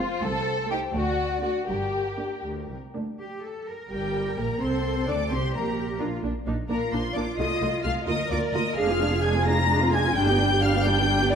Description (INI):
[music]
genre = quick classical-period movement for string orchestra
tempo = 86 BPM (dotted quarters)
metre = 6/8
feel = rubato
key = G minor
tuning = A4 = 440 Hz
[part]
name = rich symphonic violin section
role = melody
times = 0.0-11.4 s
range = Bb4 to Bb6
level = -31 LUFS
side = left 3 dB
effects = none
[part]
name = rich symphonic violin section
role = second line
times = 0.0-11.4 s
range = F4 to Bb5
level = -28 LUFS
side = left 3 dB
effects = none
[part]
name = dark chamber viola section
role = accompaniment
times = 0.0-11.4 s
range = G3 to G4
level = -28 LUFS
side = right 1 dB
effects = none
[part]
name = rich symphonic cello section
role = bass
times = 0.0-11.4 s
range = C2 to Bb4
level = -31 LUFS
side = right 4 dB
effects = none
[part]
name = rich symphonic double bass section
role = bass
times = 0.2-11.4 s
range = F1 to D2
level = -29 LUFS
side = right 2 dB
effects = none
[sound]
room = moderate scoring stage reverb, RT60 2.0 s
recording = dark, warm production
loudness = -23 LUFS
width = side -7 dB against mid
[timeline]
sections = 0.0-3.2 A section; 3.2-11.4 B section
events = none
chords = 0.2 Adim/C; 0.9 D; 1.7 Gm; 4.6 D5/C; 5.3 Gm; 6.0 Bb; 7.4 F7; 8.1 Bb; 8.8 Dm7b5/F; 10.2 G